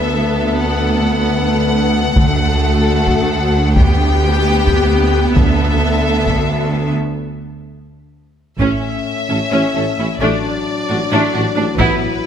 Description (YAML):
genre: cinematic, epic orchestral film score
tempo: free time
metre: none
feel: none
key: A major from 8.6 s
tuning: A4 = 440 Hz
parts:
  - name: rich studio violin section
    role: melody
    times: 0.0-12.3 s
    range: B4 to G5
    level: -22 LUFS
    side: left 4 dB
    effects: none
  - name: warm studio violin section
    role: second line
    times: 0.0-12.0 s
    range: A3 to A4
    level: -23 LUFS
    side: left 2 dB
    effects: none
  - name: clear symphonic viola section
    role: accompaniment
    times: 0.0-12.0 s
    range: A3 to E4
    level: -22 LUFS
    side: right 2 dB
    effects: none
  - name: dark French horn section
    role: sustained chords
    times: 0.0-12.3 s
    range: F#3 to B4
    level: -21 LUFS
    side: left 5 dB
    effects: none
  - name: rich symphonic cello section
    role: bass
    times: 0.0-11.9 s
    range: D2 to A2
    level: -21 LUFS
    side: right 2 dB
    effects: none
  - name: rich symphonic double bass section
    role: bass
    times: 0.0-12.0 s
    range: A1 to D2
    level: -19 LUFS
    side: right 2 dB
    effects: none
  - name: taiko ensemble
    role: drums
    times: 2.2-12.3 s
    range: none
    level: -17 LUFS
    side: equal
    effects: none
  - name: timpani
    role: percussion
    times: 2.2-2.8, 5.4-6.0 s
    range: D3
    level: -23 LUFS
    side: right 1 dB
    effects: none
  - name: mellow tuba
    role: bass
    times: 8.6-11.9 s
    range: A1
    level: -24 LUFS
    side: right 3 dB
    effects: none
room: moderate scoring stage reverb, RT60 1.9 s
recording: none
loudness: -13 LUFS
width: side -8 dB against mid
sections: 0.0-8.6 A section; 8.6-12.3 B section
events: break 7.0-8.6; drum fill 7.9-8.6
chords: 0.0 Asus2/D; 2.2 D; 3.8 G/D; 5.4 Asus2/D; 7.0 N.C.; 8.6 A; 10.2 D/A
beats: free time